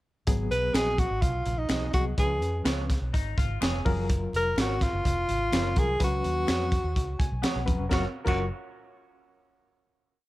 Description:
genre	uptempo 1960s-style soul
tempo	126 BPM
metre	4/4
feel	straight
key	F# major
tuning	A4 = 440 Hz
part	barky reed electric piano	accompaniment	0.3-8.5 s	E#3 to G#5	-34 LUFS	left 3 dB	overdrive, fast tremolo
part	vintage muted fingered electric bass	bass	0.3-8.5 s	E1 to E#2	-31 LUFS	equal	none
part	crunchy breakbeat drum kit	drums	0.3-8.4 s	crash cymbal, hi-hat, kick drum, snare drum	-28 LUFS	equal	none
part	congas	percussion	0.3-8.5 s	none	-41 LUFS	right 2 dB	none
part	breathy tenor saxophone	melody	0.5-8.5 s	D#4 to B4	-28 LUFS	equal	none
part	electric guitar through a small old amp	stabs	0.7-8.4 s	B3 to D#5	-39 LUFS	right 5 dB	none
part	finger snap	percussion	0.8-8.5 s	none	-39 LUFS	left 5 dB	none
part	direct-recorded clean electric guitar	riff	3.1-4.1 s	D#4 to G#4	-37 LUFS	left 5 dB	lush chorus
room	little or no reverb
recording	none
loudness	-24 LUFS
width	side -17 dB against mid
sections	0.3-7.9 pre-chorus; 7.9-9.8 final chord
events	reed electric piano fill 7.0-7.9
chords	0.3 G#m7; 2.2 C#7; 3.9 F#maj7; 6.0 C#7sus4; 7.9 F#maj7

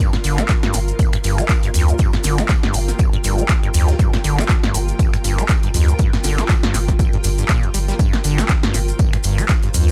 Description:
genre	acid house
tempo	120 BPM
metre	4/4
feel	swing 57% on 16ths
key	G minor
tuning	A4 = 440 Hz
part	acid bass, saw	riff	0.0-9.9 s	G1 to Bb3	-25 LUFS	equal	overdrive, lush chorus, vintage 12-bit sampler grit, analog delay
part	granular cloud pad	texture	0.0-9.9 s	F4 to G5	-30 LUFS	equal	built-in reverb, sidechain pumping
part	modern studio drum kit	drums	0.1-9.9 s	hi-hat, snare drum, tambourine	-40 LUFS	equal	none
part	punchy analog drum machine	drums	0.1-9.9 s	finger snaps, handclaps, hi-hat, snare drum	-26 LUFS	equal	overdrive
part	warm sub bass	bass	0.2-9.9 s	G1 to D2	-21 LUFS	equal	sidechain pumping
part	maracas	percussion	0.2-9.9 s	none	-32 LUFS	equal	none
part	electronic kick drum	drums	0.5-9.6 s	none	-19 LUFS	equal	overdrive
room	little or no reverb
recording	dry, gritty hardware recording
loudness	-17 LUFS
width	mono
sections	0.0-9.9 A section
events	none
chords	0.0 Gm7

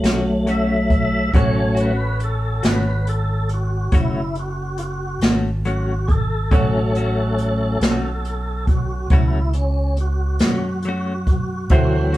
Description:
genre	slow blues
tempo	46 BPM (dotted quarters)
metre	12/8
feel	straight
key	F# minor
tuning	A4 = 441 Hz
part	bright grand piano	accompaniment	0.0-12.2 s	C#4 to C#5	-30 LUFS	right 2 dB	none
part	direct-recorded clean electric guitar	accompaniment	0.0-12.2 s	D3 to F#4	-27 LUFS	left 3 dB	tremolo
part	tonewheel organ	sustained chords	0.0-12.2 s	E3 to E5	-24 LUFS	equal	slow rotary speaker, overdrive, chorus vibrato
part	fingered electric bass	bass	0.0-12.2 s	F#1 to F#2	-22 LUFS	equal	none
part	jazz brush drum kit	drums	0.0-12.2 s	hi-hat, kick drum, snare drum	-18 LUFS	equal	none
room	moderate studio reverb, RT60 0.8 s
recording	band playing live in one room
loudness	-17 LUFS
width	side -15 dB against mid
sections	0.0-12.2 A section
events	tonewheel organ solo 0.0-12.2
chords	0.0 F#m

